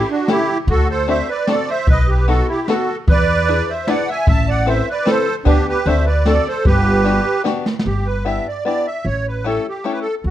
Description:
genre	musette waltz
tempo	151 BPM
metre	3/4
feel	straight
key	G major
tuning	A4 = 441 Hz
part	musette accordion	melody	0.0-10.3 s	D4 to A5	-18 LUFS	right 2 dB	slapback echo, plate reverb
part	open-back banjo	accompaniment	0.0-10.1 s	A3 to B4	-22 LUFS	left 5 dB	none
part	jazz brush drum kit	drums	0.3-7.9 s	kick drum, ride cymbal, snare drum	-19 LUFS	equal	none
part	upright bass	bass	0.7-10.3 s	G1 to E2	-18 LUFS	equal	none
room	light reverb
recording	dark, warm production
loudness	-15 LUFS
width	side -12 dB against mid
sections	0.0-7.9 A section; 7.9-10.3 A section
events	drum fill 7.7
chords	0.0 A7; 0.7 D7; 1.9 B7; 3.1 E7; 4.3 Amadd9; 5.5 G/D; 5.9 D7; 6.7 Gmaj7; 7.9 G6; 9.1 A7

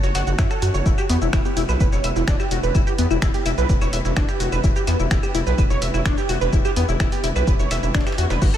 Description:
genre	melodic techno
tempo	127 BPM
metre	4/4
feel	straight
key	unclear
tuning	A4 = 441 Hz
part	tight sequenced synth	arpeggios	0.0-8.6 s	B3 to F#5	-23 LUFS	equal	chorus, sidechain pumping, ping-pong delay
part	gritty driven synth bass	bass	0.0-8.5 s	E1 to F#2	-22 LUFS	equal	tube saturation, sidechain pumping
part	dusty soul sampler-style drum kit	drums	0.0-8.5 s	hi-hat, snare drum	-38 LUFS	equal	none
part	punchy analog drum machine	drums	0.0-8.6 s	claves, crash cymbal, finger snaps, hi-hat, shaker	-29 LUFS	equal	none
part	electronic kick drum	drums	0.4-8.5 s	none	-20 LUFS	equal	none
room	light reverb, digital ambience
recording	none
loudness	-18 LUFS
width	side -11 dB against mid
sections	0.0-8.6 A section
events	none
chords	0.0 F#m; 0.9 Em

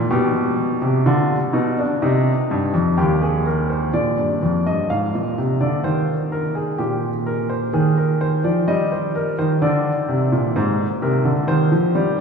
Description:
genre	classical, baroque-style two-part invention for grand piano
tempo	63 BPM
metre	4/4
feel	straight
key	unclear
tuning	A4 = 440 Hz
part	warm baby grand piano	solo	0.0-12.2 s	Eb2 to F5	-17 LUFS	equal	none
room	wet cathedral reverb, RT60 5.1 s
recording	in a vast, echoing space, studio ambience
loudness	-17 LUFS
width	side -6 dB against mid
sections	0.0-3.9 A section; 3.9-12.2 B section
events	none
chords	0.1 G/B; 2.0 Cm; 3.9 Bb; 5.8 Eb; 7.7 Abmaj7/Eb; 9.6 Bb9; 11.5 Eb

